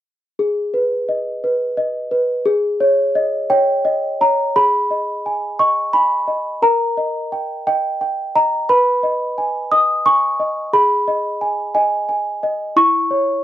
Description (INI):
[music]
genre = classical, lullaby for celesta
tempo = 58 BPM (dotted quarters)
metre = 6/8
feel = straight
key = G# minor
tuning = A4 = 439 Hz
[part]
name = small celesta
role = solo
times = 0.4-13.4 s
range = E4 to D#6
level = -15 LUFS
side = equal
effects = none
[sound]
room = little or no reverb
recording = dry, close 1970s-style studio recording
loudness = -15 LUFS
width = side -12 dB against mid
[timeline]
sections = 0.4-4.6 A section; 4.6-13.4 B section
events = none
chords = 0.4 G#m; 2.5 D#7/G#; 4.6 G#m; 6.6 D#/A#; 8.7 G#m/B; 10.7 G#m; 12.8 C#m/E